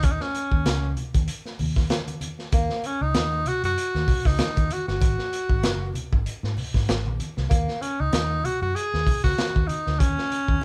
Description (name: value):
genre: funk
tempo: 96 BPM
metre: 4/4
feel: swing 56% on 16ths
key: Eb minor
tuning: A4 = 441 Hz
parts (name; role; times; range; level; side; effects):
- warm tenor saxophone; melody; 0.0-10.6 s; Bb3 to Ab4; -29 LUFS; equal; none
- vintage muted fingered electric bass; bass; 0.0-10.6 s; Gb1 to Ab2; -30 LUFS; equal; none
- crunchy breakbeat drum kit; drums; 0.0-10.6 s; hi-hat, kick drum, snare drum; -27 LUFS; equal; none
- congas; percussion; 0.0-10.6 s; none; -37 LUFS; equal; none
room: light reverb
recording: band playing live in one room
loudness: -24 LUFS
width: mono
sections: 0.0-10.6 A section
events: none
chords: 0.0 Ebm7; 5.0 Ab7(no3); 7.5 Ebm7